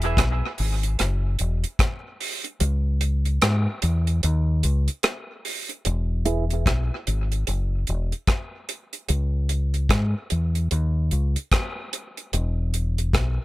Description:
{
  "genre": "dub reggae",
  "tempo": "74 BPM",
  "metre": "4/4",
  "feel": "swing 61% on 16ths",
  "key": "unclear",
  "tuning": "A4 = 441 Hz",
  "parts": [
    { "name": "deep dub fingered electric bass", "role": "bass", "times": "0.0-13.4 s", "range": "E1 to G#2", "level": "-22 LUFS", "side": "equal", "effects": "none" },
    { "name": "deep reggae drum kit", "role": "drums", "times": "0.0-13.4 s", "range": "hi-hat, kick drum, rim click", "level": "-24 LUFS", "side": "equal", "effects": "none" },
    { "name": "semi-hollow electric guitar", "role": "accompaniment", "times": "6.3-6.4 s", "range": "E4 to E5", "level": "-29 LUFS", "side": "right 4 dB", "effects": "low-pass filter, tape echo" }
  ],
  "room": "studio reverb",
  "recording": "none",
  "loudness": "-22 LUFS",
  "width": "side -18 dB against mid",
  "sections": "0.0-5.8 A section; 5.8-13.4 B section",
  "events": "break 0.0-5.8; kick muted 2.6-5.8",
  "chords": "0.0 E; 2.6 C#m; 5.8 E; 9.1 C#m; 12.3 E5",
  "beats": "0.18 0.99 1.80 | 2.61 3.42 4.23 5.04 | 5.85 6.66 7.47 8.28 | 9.09 9.90 10.71 11.52 | 12.33 13.14"
}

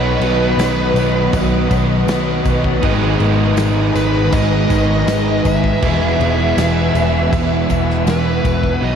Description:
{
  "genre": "rock, shoegaze and dream pop",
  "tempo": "80 BPM",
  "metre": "4/4",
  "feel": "straight",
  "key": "unclear",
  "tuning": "A4 = 442 Hz",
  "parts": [
    { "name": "nasal lead guitar with a parked wah", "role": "melody", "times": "0.0-9.0 s", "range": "B4 to E5", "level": "-22 LUFS", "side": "left 1 dB", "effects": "overdrive, diffuse ambient delay" },
    { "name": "string machine, violas", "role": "sustained chords", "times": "0.0-9.0 s", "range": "B4 to E6", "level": "-23 LUFS", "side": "equal", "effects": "ensemble chorus" },
    { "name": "crunchy overdriven guitar", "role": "riff", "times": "0.0-9.0 s", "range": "E2 to B4", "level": "-20 LUFS", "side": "right 6 dB", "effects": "reverse reverb" },
    { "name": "overdriven semi-hollow guitar", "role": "riff", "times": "0.0-8.8 s", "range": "E2 to B3", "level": "-24 LUFS", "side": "left 1 dB", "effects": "wide subtle chorus" },
    { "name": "thick fuzz guitar", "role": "riff", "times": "0.0-9.0 s", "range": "E2 to B3", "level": "-22 LUFS", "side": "left 7 dB", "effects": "distortion, analog chorus" },
    { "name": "vintage muted picked electric bass", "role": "bass", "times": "0.0-9.0 s", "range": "E1 to B1", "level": "-19 LUFS", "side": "equal", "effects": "none" },
    { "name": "loose indie drum kit", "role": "drums", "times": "0.2-8.8 s", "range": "crash cymbal, kick drum, snare drum", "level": "-22 LUFS", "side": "equal", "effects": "none" },
    { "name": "tambourine", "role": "percussion", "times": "0.2-8.6 s", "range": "none", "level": "-41 LUFS", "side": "left 13 dB", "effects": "none" }
  ],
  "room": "wet huge ambient reverb, RT60 8.4 s",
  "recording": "dreamy mix soaked in reverb",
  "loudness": "-13 LUFS",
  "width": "side -7 dB against mid",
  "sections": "0.0-8.8 A section",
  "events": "none",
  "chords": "0.0 B; 2.8 G#madd9; 5.8 Eadd9",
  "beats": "0.59 1.34 2.08 | 2.83 3.58 4.33 5.08 | 5.83 6.58 7.32 8.07 | 8.82"
}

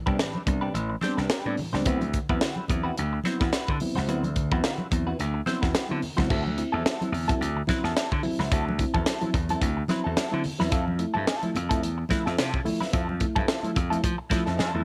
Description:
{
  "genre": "funk",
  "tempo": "108 BPM",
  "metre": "4/4",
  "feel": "swing 56% on 16ths",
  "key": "unclear",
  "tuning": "A4 = 440 Hz",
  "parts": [
    { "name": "reed electric piano", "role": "stabs", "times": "0.0-14.8 s", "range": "A2 to E4", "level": "-33 LUFS", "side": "equal", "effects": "none" },
    { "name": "clean electric guitar", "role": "accompaniment", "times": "0.1-14.8 s", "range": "F3 to C5", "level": "-34 LUFS", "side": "equal", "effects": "wah" },
    { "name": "slap bass", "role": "bass", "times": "0.1-14.8 s", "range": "A1 to F3", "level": "-31 LUFS", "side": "equal", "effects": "none" },
    { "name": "tight funk drum kit", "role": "drums", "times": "0.1-14.7 s", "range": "crash cymbal, hi-hat, kick drum, snare drum", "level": "-30 LUFS", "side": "equal", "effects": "none" },
    { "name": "congas", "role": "percussion", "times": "0.3-14.7 s", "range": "none", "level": "-37 LUFS", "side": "equal", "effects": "none" }
  ],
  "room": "light reverb, small room ambience",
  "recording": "none",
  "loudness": "-26 LUFS",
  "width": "mono",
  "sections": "0.0-6.3 A section; 6.3-14.8 B section",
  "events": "drum fill 14.6",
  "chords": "0.0 Am11; 1.9 D13; 6.3 D9; 10.7 Fmaj7",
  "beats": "0.19 0.75 1.31 | 1.86 2.42 2.98 3.53 | 4.09 4.64 5.20 5.75 | 6.31 6.86 7.41 7.97 | 8.52 9.07 9.62 10.18 | 10.73 11.28 11.83 12.38 | 12.93 13.48 14.04 14.59"
}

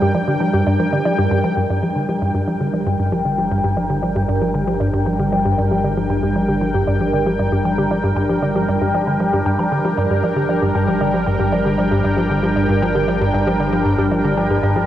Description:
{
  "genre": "ambient, sequencer-driven space music",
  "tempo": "116 BPM",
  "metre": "4/4",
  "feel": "straight",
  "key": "G minor",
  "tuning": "A4 = 443 Hz",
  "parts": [
    { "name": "phased analog pad", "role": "sustained chords", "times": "0.0-14.9 s", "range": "G3 to G5", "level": "-19 LUFS", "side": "equal", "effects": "phaser, chorus" },
    { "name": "warbly dusty pluck", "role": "arpeggios", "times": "0.0-14.9 s", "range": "G4 to Bb5", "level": "-25 LUFS", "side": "right 1 dB", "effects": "chorus, auto-pan, analog delay" },
    { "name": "tight sequencer bass", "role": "riff", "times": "0.0-14.9 s", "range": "G2 to F3", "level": "-19 LUFS", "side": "equal", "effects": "analog chorus, analog delay" },
    { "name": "bubbling stepped-filter texture", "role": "texture", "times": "0.0-14.9 s", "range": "G5", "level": "-35 LUFS", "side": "right 1 dB", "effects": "chorus, built-in reverb" },
    { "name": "analog drone", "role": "bass", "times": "3.1-14.9 s", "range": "G1", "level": "-28 LUFS", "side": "equal", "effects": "chorus" }
  ],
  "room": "wet huge ambient reverb, RT60 7.7 s",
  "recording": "worn, warbling old tape, cassette tape, warbly pitch drift",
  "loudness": "-16 LUFS",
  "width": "side -12 dB against mid",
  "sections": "0.0-1.6 A section; 1.6-14.9 B section",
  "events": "fade-in on synth texture 1.6-14.9",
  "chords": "0.0 Gm",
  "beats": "0.02 0.54 1.05 | 1.57 2.09 2.60 3.12 | 3.64 4.16 4.67 5.19 | 5.71 6.23 6.74 7.26 | 7.78 8.29 8.81 9.33 | 9.85 10.36 10.88 11.40 | 11.91 12.43 12.95 13.47 | 13.98 14.50"
}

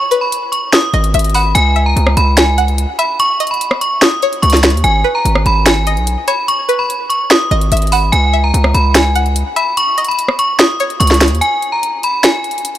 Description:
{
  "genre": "hip hop, trap",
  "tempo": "146 BPM",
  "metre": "4/4",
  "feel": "half-time",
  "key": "unclear",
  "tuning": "A4 = 439 Hz",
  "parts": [
    { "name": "metallic FM bell", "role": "melody", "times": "0.0-12.8 s", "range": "G#5 to D#6", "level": "-15 LUFS", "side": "equal", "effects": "chorus, low-pass filter" },
    { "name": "string-like resonator pluck", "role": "second line", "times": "0.1-11.4 s", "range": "B4 to F#5", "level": "-20 LUFS", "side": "left 1 dB", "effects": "chorus, phaser, tape echo" },
    { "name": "trap drum kit", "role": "drums", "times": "0.1-12.8 s", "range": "hi-hat, rim click, snare drum", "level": "-14 LUFS", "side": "equal", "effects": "overdrive" },
    { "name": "distorted 808-style bass", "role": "bass", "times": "0.9-11.4 s", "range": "G#1 to D#2", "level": "-13 LUFS", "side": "equal", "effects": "distortion" }
  ],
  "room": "digital ambience",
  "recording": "none",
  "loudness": "-10 LUFS",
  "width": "side -12 dB against mid",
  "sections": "0.0-11.4 A section; 11.4-12.8 B section",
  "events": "break 11.4-12.8",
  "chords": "0.0 G#m; 1.6 C#m; 4.8 G#m; 8.1 C#m; 11.4 N.C.",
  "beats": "0.32 0.73 1.14 | 1.55 1.96 2.37 2.79 | 3.20 3.61 4.02 4.43 | 4.84 5.25 5.66 6.07 | 6.48 6.89 7.30 7.72 | 8.13 8.54 8.95 9.36 | 9.77 10.18 10.59 11.00 | 11.41 11.83 12.24 12.65"
}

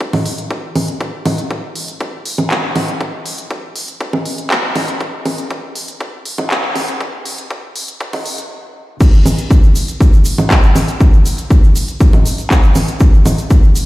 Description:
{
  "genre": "techno",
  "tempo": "120 BPM",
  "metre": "4/4",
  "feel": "straight",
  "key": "none",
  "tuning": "none",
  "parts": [
    { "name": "electronic kick drum", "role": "drums", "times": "0.0-13.6 s", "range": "none", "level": "-10 LUFS", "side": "equal", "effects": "overdrive, high-pass filter on kick, studio reverb" },
    { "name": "techno drum kit", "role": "drums", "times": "0.0-13.9 s", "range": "congas, crash cymbal, handclaps, hi-hat", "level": "-18 LUFS", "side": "equal", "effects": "overdrive, studio reverb" },
    { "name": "egg shaker", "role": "percussion", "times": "9.0-13.9 s", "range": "none", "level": "-29 LUFS", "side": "right 4 dB", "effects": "none" }
  ],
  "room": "light reverb",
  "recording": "played on a big sound system in a bare room, stone room reverb, high-pass filter",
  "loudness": "-12 LUFS",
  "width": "side -17 dB against mid",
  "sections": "0.0-9.0 A section; 9.0-13.9 B section",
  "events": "build-up 0.0-9.0; filter sweep 0.0-9.0; stop 8.5-9.0; drop 9.0-13.9",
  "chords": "none",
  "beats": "0.01 0.51 | 1.01 1.51 2.01 2.51 | 3.01 3.51 4.01 4.51 | 5.01 5.51 6.01 6.51 | 7.01 7.51 8.01 8.51 | 9.01 9.51 10.01 10.51 | 11.01 11.51 12.01 12.51 | 13.01 13.51"
}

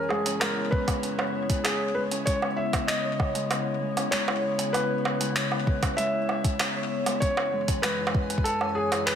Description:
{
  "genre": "IDM",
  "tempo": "97 BPM",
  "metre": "4/4",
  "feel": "straight",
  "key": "C# minor",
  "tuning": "A4 = 440 Hz",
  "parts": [
    { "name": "felt-muted upright piano", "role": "melody", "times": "0.0-9.2 s", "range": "G#4 to E5", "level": "-30 LUFS", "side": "left 1 dB", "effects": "ping-pong delay" },
    { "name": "glassy FM pad", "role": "sustained chords", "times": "0.0-9.2 s", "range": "F#2 to G#5", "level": "-33 LUFS", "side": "left 3 dB", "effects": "ensemble chorus, built-in reverb" },
    { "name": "Celtic harp", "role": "arpeggios", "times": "0.0-9.2 s", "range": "G#3 to C#5", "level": "-31 LUFS", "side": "equal", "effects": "low-pass filter, ping-pong delay" },
    { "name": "jungle sampler-style drum kit", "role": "drums", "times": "0.1-9.2 s", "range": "bongos, handclaps, hi-hat", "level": "-29 LUFS", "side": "right 2 dB", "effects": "none" },
    { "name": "electronic kick drum", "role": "drums", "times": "0.7-8.5 s", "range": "none", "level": "-26 LUFS", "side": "equal", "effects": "none" }
  ],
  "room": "light reverb, digital ambience",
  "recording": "none",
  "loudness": "-24 LUFS",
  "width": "side -8 dB against mid",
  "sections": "0.0-9.2 A section",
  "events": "none",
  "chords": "0.0 C#m7; 7.2 F#sus2",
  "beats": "0.41 1.03 1.65 | 2.27 2.89 3.51 4.12 | 4.74 5.36 5.98 6.60 | 7.22 7.84 8.46 9.07"
}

